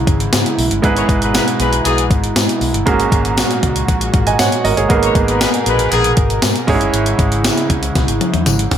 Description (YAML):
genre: 1980s-style pop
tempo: 118 BPM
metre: 4/4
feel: straight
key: unclear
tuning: A4 = 439 Hz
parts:
  - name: clear grand piano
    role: accompaniment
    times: 0.0-8.8 s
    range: G#2 to G#5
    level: -18 LUFS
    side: right 4 dB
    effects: none
  - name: warm analog pad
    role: sustained chords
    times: 0.0-8.8 s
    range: A#2 to A#4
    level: -21 LUFS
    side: right 1 dB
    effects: chorus
  - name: vintage muted fingered electric bass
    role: bass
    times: 0.0-8.8 s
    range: G1 to G#2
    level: -20 LUFS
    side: left 1 dB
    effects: none
  - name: clean 12-bit digital drum machine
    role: drums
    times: 0.1-8.8 s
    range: hi-hat, kick drum, snare drum, tambourine, toms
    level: -16 LUFS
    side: left 1 dB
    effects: overdrive, gated reverb
  - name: tambourine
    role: percussion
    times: 0.3-8.6 s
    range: none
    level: -27 LUFS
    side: left 10 dB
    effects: none
  - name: mellow horn section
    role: stabs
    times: 1.0-6.1 s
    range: D#3 to C#5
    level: -19 LUFS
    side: left 4 dB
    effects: none
room: light reverb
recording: none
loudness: -12 LUFS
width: side -9 dB against mid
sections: 0.0-8.8 A section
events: drum fill 8.0-8.8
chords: 0.0 C#m; 0.8 E/G#; 2.9 F#add9/G#; 4.9 G#madd9; 6.7 C#m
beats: 0.33 | 0.83 1.34 1.85 2.36 | 2.87 3.38 3.88 4.39 | 4.90 5.41 5.92 6.43 | 6.94 7.44 7.95 8.46